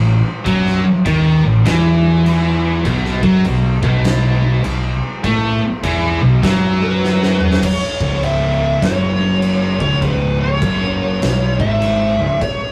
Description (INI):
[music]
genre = stoner and doom metal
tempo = 100 BPM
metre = 4/4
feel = swing 63% on 8ths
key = C# minor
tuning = A4 = 444 Hz
[part]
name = high-gain distorted guitar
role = riff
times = 0.0-7.6 s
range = A2 to A3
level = -22 LUFS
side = equal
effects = distortion
[part]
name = thick fuzz guitar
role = riff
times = 0.0-12.4 s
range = C#2 to A3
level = -22 LUFS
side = equal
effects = distortion
[part]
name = thick fuzz guitar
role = riff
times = 0.0-12.4 s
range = C#2 to A3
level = -23 LUFS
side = equal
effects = distortion
[part]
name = fuzz fingered electric bass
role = bass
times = 0.0-12.4 s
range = C#1 to A2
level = -21 LUFS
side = equal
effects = overdrive
[part]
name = oversized low-tuned drum kit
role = drums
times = 0.5-12.6 s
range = crash cymbal, kick drum, snare drum, toms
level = -25 LUFS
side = equal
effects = none
[part]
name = fuzz lead guitar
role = melody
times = 6.8-12.7 s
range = B4 to E5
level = -22 LUFS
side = equal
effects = wah, distortion
[sound]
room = wet studio reverb, RT60 0.6 s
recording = rough rehearsal-room recording, warm saturation, cassette tape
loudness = -15 LUFS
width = mono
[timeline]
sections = 0.0-7.6 A section; 7.6-12.7 B section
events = drum fill 7.0-7.6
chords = 0.0 A5; 2.8 B5; 7.6 C#m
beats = | 0.46 1.05 1.65 2.25 | 2.85 3.44 4.04 4.64 | 5.23 5.83 6.43 7.03 | 7.63 8.22 8.82 9.42 | 10.02 10.62 11.22 11.82 | 12.42